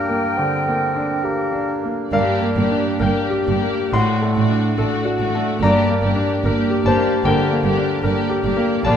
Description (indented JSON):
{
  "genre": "classical, romantic movement for piano and orchestra",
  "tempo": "63-75 BPM",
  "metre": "4/4",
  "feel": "rubato",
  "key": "G minor",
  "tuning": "A4 = 436 Hz",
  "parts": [
    { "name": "bright concert grand piano", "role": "melody", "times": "0.0-9.0 s", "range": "Bb1 to C6", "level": "-19 LUFS", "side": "left 1 dB", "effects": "none" },
    { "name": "clear oboe", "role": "second line", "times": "0.0-1.7 s", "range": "Bb4", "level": "-27 LUFS", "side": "left 2 dB", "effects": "none" },
    { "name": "small flute group", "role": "second line", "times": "0.0-1.7 s", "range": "G5", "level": "-26 LUFS", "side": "right 1 dB", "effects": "none" },
    { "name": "clear bassoon", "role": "accompaniment", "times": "0.0-2.1 s", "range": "Bb3 to C4", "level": "-26 LUFS", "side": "right 2 dB", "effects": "none" },
    { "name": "rich symphonic violin section", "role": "melody", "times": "2.1-9.0 s", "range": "D5", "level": "-31 LUFS", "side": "left 6 dB", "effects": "none" },
    { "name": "rich symphonic violin section", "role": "second line", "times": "2.1-9.0 s", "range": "F4 to G4", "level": "-26 LUFS", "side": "left 3 dB", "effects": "none" },
    { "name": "dark symphonic viola section", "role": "accompaniment", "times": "2.1-9.0 s", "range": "A3 to Bb3", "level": "-25 LUFS", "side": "right 2 dB", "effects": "none" },
    { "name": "dark studio double bass section", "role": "bass", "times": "2.1-8.9 s", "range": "G1 to Bb1", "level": "-26 LUFS", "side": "right 3 dB", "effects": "none" },
    { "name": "warm symphonic cello section", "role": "bass", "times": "2.1-8.9 s", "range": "G2 to Bb2", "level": "-26 LUFS", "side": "right 4 dB", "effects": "none" }
  ],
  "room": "moderate scoring stage reverb, RT60 1.6 s",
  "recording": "none",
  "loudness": "-16 LUFS",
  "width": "side -8 dB against mid",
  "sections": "0.0-2.1 A section; 2.1-9.0 B section",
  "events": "none",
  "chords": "0.0 Gm; 3.9 D7/A; 5.6 Gm"
}